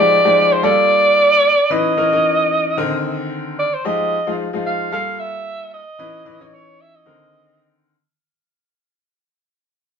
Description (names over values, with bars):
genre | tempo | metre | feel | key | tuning
funk | 112 BPM | 4/4 | swing 56% on 16ths | unclear | A4 = 440 Hz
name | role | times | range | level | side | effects
breathy alto saxophone | melody | 0.0-7.8 s | C5 to F5 | -15 LUFS | right 1 dB | none
bright grand piano | accompaniment | 0.0-7.9 s | D3 to Db5 | -21 LUFS | left 4 dB | none
room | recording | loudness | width
moderate studio reverb, RT60 0.5 s | band playing live in one room | -14 LUFS | side -7 dB against mid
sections
0.0-8.1 A section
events
fade-out 0.0-8.1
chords
0.0 Fm9; 0.6 Gm9; 1.7 Dbm9; 2.8 Cm9; 3.8 Fm9; 4.9 Gm9; 6.0 Dbm9; 7.1 Cm9